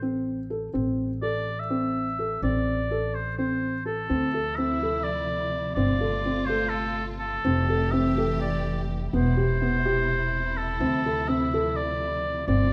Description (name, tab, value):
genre	contemporary instrumental, chamber music in an uneven meter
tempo	251 BPM (eighths)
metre	7/8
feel	straight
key	unclear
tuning	A4 = 440 Hz
part	warm oboe	melody	0.0-12.7 s	A4 to E5	-31 LUFS	equal	none
part	felt-muted upright piano	arpeggios	0.0-12.7 s	B3 to A4	-30 LUFS	equal	none
part	upright bass	bass	0.0-12.7 s	E1 to D2	-32 LUFS	equal	none
part	warm symphonic string section	sustained chords	4.1-12.7 s	B2 to G4	-36 LUFS	equal	none
room	moderate recital hall reverb, RT60 1.7 s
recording	close, detailed microphones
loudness	-26 LUFS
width	mono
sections	0.0-4.1 A section; 4.1-12.7 B section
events	none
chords	0.0 Am; 4.1 Dm9; 5.8 G9sus4; 7.4 Fmaj9; 9.1 Cmaj7/E; 10.8 Dm9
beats	0.02 0.26 0.50 | 0.74 0.98 1.22 1.46 1.70 1.94 2.18 | 2.42 2.66 2.90 3.14 3.38 3.62 3.86 | 4.10 4.34 4.58 4.82 5.05 5.29 5.53 | 5.77 6.01 6.25 6.49 6.73 6.97 7.21 | 7.45 7.69 7.93 8.16 8.40 8.64 8.88 | 9.12 9.36 9.60 9.84 10.08 10.32 10.56 | 10.80 11.04 11.28 11.52 11.76 11.99 12.23 | 12.47 12.71